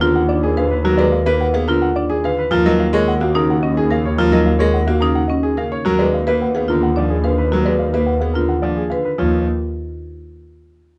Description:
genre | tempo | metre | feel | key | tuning
classical, minimalist pattern music | 108 BPM | 3/4 | straight | Eb minor | A4 = 439 Hz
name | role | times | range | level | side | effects
dark baby grand piano | melody | 0.0-9.4 s | Ab4 to Gb5 | -26 LUFS | equal | none
clear grand piano | accompaniment | 0.0-9.4 s | Db3 to Cb4 | -24 LUFS | equal | none
marimba with medium mallets | arpeggios | 0.0-9.4 s | Db4 to Cb5 | -21 LUFS | equal | none
rich chamber double bass section | bass | 0.0-9.4 s | Eb2 | -22 LUFS | equal | none
room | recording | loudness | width
little or no reverb | dark, warm production, nothing above 10.8 kHz | -17 LUFS | mono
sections
0.0-9.2 A section; 9.2-10.9 B section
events
none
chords
0.0 Bb7b9b13/Eb; 2.5 Ebm9; 5.9 Bb7b9b13/Eb; 9.2 Ebsus2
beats
0.30 | 0.85 1.41 1.97 | 2.52 3.08 3.63 | 4.19 4.74 5.30 | 5.85 6.41 6.96 | 7.52 8.08 8.63 | 9.19

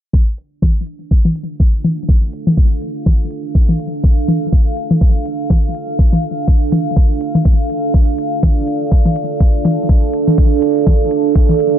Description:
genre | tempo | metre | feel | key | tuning
minimal techno | 123 BPM | 4/4 | swing 56% on 16ths | D minor | A4 = 439 Hz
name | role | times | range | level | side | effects
electronic kick drum | drums | 0.1-11.5 s | none | -11 LUFS | equal | none
deep dark ambient pad | texture | 1.3-11.8 s | D4 to F5 | -18 LUFS | right 4 dB | chorus, built-in reverb, sidechain pumping
electronic hi-hat | drums | 0.4-11.7 s | none | -53 LUFS | right 1 dB | none
electronic toms | percussion | 0.6-11.6 s | none | -18 LUFS | left 2 dB | tape echo
room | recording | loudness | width
digital ambience | echo-heavy mix, low-pass filter | -12 LUFS | side -10 dB against mid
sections
0.1-11.8 A section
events
filter sweep 0.1-11.8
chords
0.1 Dm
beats
| 0.13 0.62 1.11 1.60 | 2.09 2.57 3.06 3.55 | 4.04 4.53 5.01 5.50 | 5.99 6.48 6.96 7.45 | 7.94 8.43 8.91 9.40 | 9.89 10.38 10.87 11.35

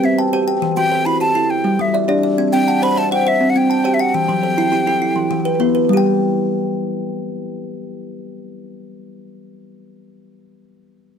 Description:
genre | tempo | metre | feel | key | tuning
southern african traditional, mbira-style interlocking cycle | 137 BPM (dotted quarters) | 12/8 | straight | unclear | A4 = 440 Hz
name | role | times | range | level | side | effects
breathy mellow silver concert flute | melody | 0.0-5.6 s | E5 to B5 | -18 LUFS | equal | none
kalimba | arpeggios | 0.0-10.5 s | E3 to G5 | -19 LUFS | left 2 dB | slapback echo
kalimba | arpeggios | 0.0-10.5 s | E3 to A5 | -21 LUFS | right 3 dB | none
room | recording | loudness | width
moderate small room reverb, RT60 0.5 s | close, detailed microphones | -14 LUFS | side -7 dB against mid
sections
0.0-5.9 A section; 5.9-9.4 B section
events
none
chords
0.0 C5; 0.6 Em; 1.5 G5; 2.4 C; 4.1 Em; 5.9 N.C.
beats
0.18 | 0.62 1.06 1.50 1.94 | 2.38 2.82 3.26 3.70 | 4.14 4.58 5.02 5.46 | 5.89 6.33 6.77 7.21 | 7.65 8.09 8.53 8.96

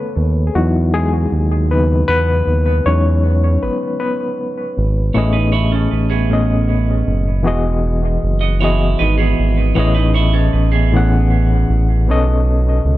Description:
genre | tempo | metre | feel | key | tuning
slow six-eight R&B | 52 BPM (dotted quarters) | 6/8 | straight | E major | A4 = 440 Hz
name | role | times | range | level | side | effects
overdriven reed electric piano | accompaniment | 0.0-13.0 s | A2 to F#5 | -18 LUFS | left 2 dB | fast tremolo, analog delay
smooth gliding synth bass | bass | 0.2-13.0 s | E1 to E2 | -15 LUFS | equal | none
semi-hollow electric guitar | second line | 5.1-11.8 s | B3 to D#5 | -22 LUFS | right 8 dB | analog delay
room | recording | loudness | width
little or no reverb | echo-heavy mix | -13 LUFS | side -16 dB against mid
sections
0.0-5.1 A section; 5.1-13.0 B section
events
reed electric piano solo 0.0-5.1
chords
0.0 B13; 0.5 C#m11; 2.8 Emaj7; 5.1 Amaj9#11; 7.5 Emaj9; 9.8 Amaj9#11; 12.1 B9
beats
| 0.53 1.68 | 2.84 3.99 | 5.14 6.30 | 7.45 8.61 | 9.76 10.91 | 12.07

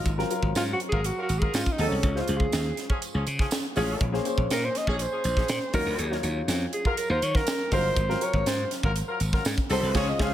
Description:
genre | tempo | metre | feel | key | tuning
polished 1980s jazz-funk pop | 121 BPM | 4/4 | straight | unclear | A4 = 440 Hz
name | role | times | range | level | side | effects
dark baby grand piano | accompaniment | 0.0-10.3 s | Gb3 to Db5 | -32 LUFS | left 2 dB | lush chorus
slap bass | bass | 0.1-10.3 s | G1 to Eb3 | -28 LUFS | equal | none
crisp fusion drum kit | drums | 0.1-10.3 s | crash cymbal, hi-hat, kick drum, snare drum | -28 LUFS | equal | gated reverb
tambourine | percussion | 0.1-9.8 s | none | -41 LUFS | right 7 dB | none
breathy alto saxophone | melody | 0.6-10.3 s | Db4 to F5 | -29 LUFS | equal | none
mellow horn section | second line | 0.9-10.3 s | F3 to Bb4 | -33 LUFS | left 1 dB | none
room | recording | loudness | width
light reverb, small room ambience | none | -24 LUFS | side -12 dB against mid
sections
0.0-10.3 A section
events
alto saxophone solo 0.0-10.3; band accent 9.9-10.3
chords
0.1 Ab13; 1.5 Ab7b9; 2.0 Dbmaj7; 4.0 Bbm9; 5.7 Ebm9; 8.0 Ab13; 9.4 Ab7b9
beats
| 0.06 0.55 1.05 1.54 | 2.03 2.53 3.02 3.51 | 4.01 4.50 5.00 5.49 | 5.99 6.48 6.97 7.47 | 7.96 8.46 8.96 9.45 | 9.95

